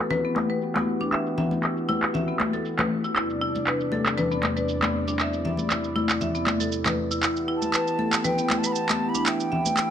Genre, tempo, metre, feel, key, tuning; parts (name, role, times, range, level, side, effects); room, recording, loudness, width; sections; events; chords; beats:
afro house; 118 BPM; 4/4; swing 54% on 16ths; E minor; A4 = 440 Hz
warm analog pad; sustained chords; 0.0-9.9 s; E2 to D5; -29 LUFS; right 2 dB; chorus, vintage 12-bit sampler grit
marimba with hard mallets; arpeggios; 0.1-9.9 s; B3 to E5; -28 LUFS; left 2 dB; low-pass filter, dub echo
electronic shaker and handclaps; drums; 0.1-9.9 s; -27 LUFS; right 2 dB; low-pass filter on snare, studio reverb, low-pass filter on perc, low-pass filter on hats, low-pass filter on toms
congas; percussion; 0.1-9.7 s; -29 LUFS; left 3 dB
mellow silver concert flute; melody; 7.6-9.9 s; G5 to B5; -28 LUFS; right 1 dB
moderate plate reverb, RT60 1.5 s, small room ambience; -22 LUFS; side -9 dB against mid
0.0-9.9 A section
filter sweep on drum 0.0-9.9
0.0 Emadd9; 3.2 Csus2/E; 7.2 Em
0.11 0.62 | 1.13 1.64 2.14 2.65 | 3.16 3.67 4.18 4.68 | 5.19 5.70 6.21 6.72 | 7.23 7.74 8.24 8.75 | 9.26 9.77